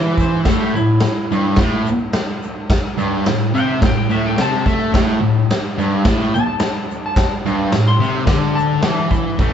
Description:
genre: garage rock duo or trio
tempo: 108 BPM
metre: 4/4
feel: straight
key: unclear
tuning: A4 = 440 Hz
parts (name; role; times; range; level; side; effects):
- clean lap steel guitar; melody; 0.0-9.1 s; E4 to C6; -24 LUFS; left 2 dB; none
- thick fuzz guitar; riff; 0.0-9.5 s; G2 to A3; -16 LUFS; equal; distortion
- raw garage drum kit; drums; 0.2-9.5 s; crash cymbal, hi-hat, kick drum, snare drum; -19 LUFS; equal; none
- tube shaker; percussion; 0.2-9.5 s; none; -47 LUFS; right 4 dB; none
room: moderate studio reverb, RT60 1.0 s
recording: band playing live in one room, nothing above 7.8 kHz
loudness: -14 LUFS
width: side -8 dB against mid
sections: 0.0-9.4 A section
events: electric slide guitar solo 0.0-9.4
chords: 0.0 A5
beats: | 0.47 1.03 1.59 2.15 | 2.71 3.27 3.83 4.38 | 4.94 5.50 6.05 6.61 | 7.17 7.72 8.28 8.84 | 9.40

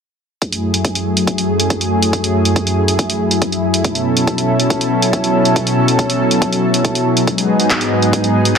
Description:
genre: uplifting trance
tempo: 140 BPM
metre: 4/4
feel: straight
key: F# dorian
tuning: A4 = 441 Hz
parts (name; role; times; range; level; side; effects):
- lush unison pad; sustained chords; 0.4-8.6 s; F#2 to A4; -14 LUFS; equal; chorus, sidechain pumping
- electronic kick drum; drums; 0.4-8.6 s; none; -21 LUFS; equal; high-pass filter on kick
- punchy analog drum machine; drums; 0.4-8.6 s; handclaps, hi-hat; -19 LUFS; right 1 dB; sidechain pumping on hats
room: light reverb, digital ambience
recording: none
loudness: -13 LUFS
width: side -6 dB against mid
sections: 0.4-8.6 A section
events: none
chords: 0.4 F#m7; 3.8 B7sus4; 7.3 G#m7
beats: | 0.42 0.85 1.27 1.70 | 2.13 2.56 2.99 3.42 | 3.85 4.28 4.70 5.13 | 5.56 5.99 6.42 6.85 | 7.28 7.70 8.13 8.56

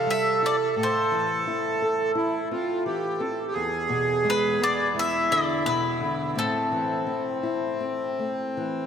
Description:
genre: fado-style ballad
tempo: 85 BPM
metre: 4/4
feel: rubato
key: A minor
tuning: A4 = 442 Hz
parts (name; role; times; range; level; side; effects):
- bowl-back mandolin; melody; 0.0-8.5 s; A4 to E5; -27 LUFS; left 2 dB; none
- accordion; second line; 0.0-8.9 s; C4 to A4; -26 LUFS; right 2 dB; none
- nylon-string guitar; accompaniment; 0.0-8.9 s; E2 to A4; -31 LUFS; left 4 dB; none
room: wet cathedral reverb, RT60 5.3 s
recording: in a vast, echoing space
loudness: -23 LUFS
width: side -8 dB against mid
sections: 0.0-8.9 A section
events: none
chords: 0.0 C; 0.8 Am; 3.6 E7; 6.4 Am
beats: 0.07 | 0.77 1.47 2.16 2.85 | 3.55 4.25 4.96 5.65 | 6.36 7.08 7.81 8.57

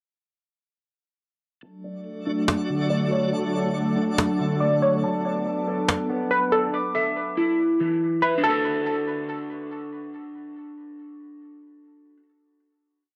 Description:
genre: hip hop, atmospheric cloud-rap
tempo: 141 BPM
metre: 4/4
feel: half-time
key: D major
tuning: A4 = 442 Hz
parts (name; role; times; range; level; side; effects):
- glassy FM pad; sustained chords; 1.6-6.7 s; F#3 to A4; -30 LUFS; equal; ensemble chorus, built-in reverb, low-pass filter
- electric guitar at the edge of break-up; arpeggios; 1.6-12.3 s; D3 to D6; -29 LUFS; equal; phaser, low-pass filter, tape echo
- twinkling granular texture; texture; 2.2-5.0 s; A3 to D5; -35 LUFS; equal; built-in reverb
- cajon; drums; 2.5-6.0 s; none; -25 LUFS; equal; none
- glassy wavetable pluck; melody; 2.9-9.7 s; A4 to D5; -28 LUFS; equal; chorus, low-pass filter, tape echo
room: light reverb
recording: dry, gritty hardware recording, cassette tape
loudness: -24 LUFS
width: mono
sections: 1.6-8.4 breakdown; 8.4-11.8 final chord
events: filter sweep 1.6-8.4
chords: 1.6 D; 5.0 Bm7; 6.7 Bmadd11/E (rootless); 8.4 D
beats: | 1.63 2.05 2.48 2.90 | 3.33 3.75 4.18 4.61 | 5.03 5.46 5.88 6.31 | 6.73 7.16 7.58 8.01 | 8.44 8.86 9.29 9.71 | 10.14 10.56 10.99 11.41

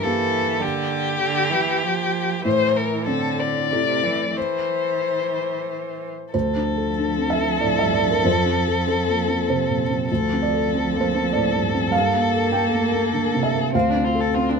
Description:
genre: neoclassical piano and strings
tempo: 90-101 BPM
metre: 3/4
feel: rubato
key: D minor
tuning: A4 = 441 Hz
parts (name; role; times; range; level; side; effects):
- warm violin; melody; 0.0-14.6 s; C4 to D5; -23 LUFS; left 5 dB; none
- rich cello; second line; 0.0-14.6 s; C3 to C4; -28 LUFS; right 7 dB; none
- felt-muted upright piano; accompaniment; 0.0-14.6 s; D2 to G5; -21 LUFS; right 1 dB; none
room: moderate studio reverb, RT60 0.8 s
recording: minimal, uncompressed stereo recording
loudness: -19 LUFS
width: side -5 dB against mid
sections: 0.0-6.3 A section; 6.3-14.6 B section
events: none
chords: 0.0 Gm; 2.5 Am; 6.3 Dm7; 8.2 F; 10.1 Dm7; 11.9 Gmadd9; 13.7 Dm7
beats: 0.03 | 0.62 1.23 1.84 | 2.45 3.08 3.71 | 4.36 5.02 5.68 | 6.33 6.98 7.62 | 8.25 8.86 9.48 | 10.09 10.71 11.32 | 11.93 12.53 13.13 | 13.74 14.34

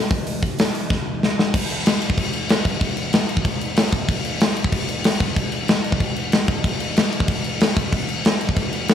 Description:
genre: punk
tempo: 188 BPM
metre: 4/4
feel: straight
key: none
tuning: none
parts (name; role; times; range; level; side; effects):
- big rock drum kit; drums; 0.1-8.9 s; crash cymbal, hi-hat, kick drum, snare drum; -18 LUFS; left 1 dB; none
room: light reverb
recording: studio ambience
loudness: -18 LUFS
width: side -9 dB against mid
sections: 0.0-1.5 A section; 1.5-8.9 B section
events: drum fill 0.9-1.5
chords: none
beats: | 0.26 0.58 0.90 1.22 | 1.53 1.85 2.17 2.49 | 2.81 3.13 3.45 3.77 | 4.09 4.41 4.73 5.05 | 5.37 5.69 6.01 6.33 | 6.65 6.97 7.29 7.61 | 7.93 8.25 8.57 8.89

